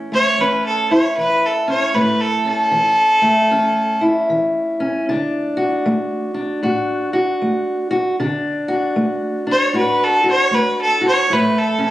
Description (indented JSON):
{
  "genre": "acoustic country blues, solo or duo",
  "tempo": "77 BPM",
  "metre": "4/4",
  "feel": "swing 63% on 8ths",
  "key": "A major",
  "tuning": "A4 = 439 Hz",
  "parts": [
    { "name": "fingerpicked steel-string acoustic guitar", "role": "accompaniment", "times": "0.0-11.9 s", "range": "E2 to F#4", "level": "-18 LUFS", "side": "equal", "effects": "none" },
    { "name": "warm fiddle", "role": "melody", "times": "0.1-4.0, 9.5-11.9 s", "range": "A4 to C#5", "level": "-15 LUFS", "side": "equal", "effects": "plate reverb" }
  ],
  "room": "moderate studio reverb, RT60 0.8 s",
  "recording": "recorded on a phone in the room, club reverb",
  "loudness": "-15 LUFS",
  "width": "side -15 dB against mid",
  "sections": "0.0-11.9 A section",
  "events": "fiddle solo 0.0-11.9",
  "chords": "0.0 A; 5.1 D; 11.3 A"
}